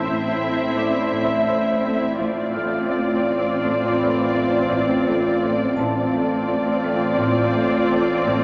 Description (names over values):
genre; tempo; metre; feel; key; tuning
cinematic, suspense film score; 84 BPM; 5/4; straight; unclear; A4 = 440 Hz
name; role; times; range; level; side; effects
muted symphonic violin section; melody; 0.0-8.4 s; D5 to E5; -28 LUFS; equal; none
muted studio viola section; accompaniment; 0.0-8.4 s; C4 to F4; -26 LUFS; equal; none
pulsing gated texture; sustained chords; 0.0-8.4 s; C4 to E5; -26 LUFS; equal; chorus, built-in reverb
muted chamber cello section; bass; 0.0-8.4 s; A2; -32 LUFS; equal; none
organ-like drone; drone; 0.0-8.4 s; A1; -32 LUFS; equal; ensemble chorus, built-in reverb
vibraphone with medium hard mallets; texture; 0.0-8.4 s; B4 to F6; -36 LUFS; equal; none
muted chamber cello section; riff; 0.1-8.4 s; A2 to A3; -32 LUFS; equal; none
muted chamber double bass section; bass; 2.2-6.4 s; A1; -38 LUFS; equal; none
room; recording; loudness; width
wet recital hall reverb, RT60 1.4 s; none; -21 LUFS; mono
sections
0.0-8.4 A section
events
none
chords
0.0 Am; 2.2 Dm7/A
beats
0.05 0.77 1.48 | 2.19 2.91 3.62 4.34 5.05 | 5.76 6.48 7.19 7.91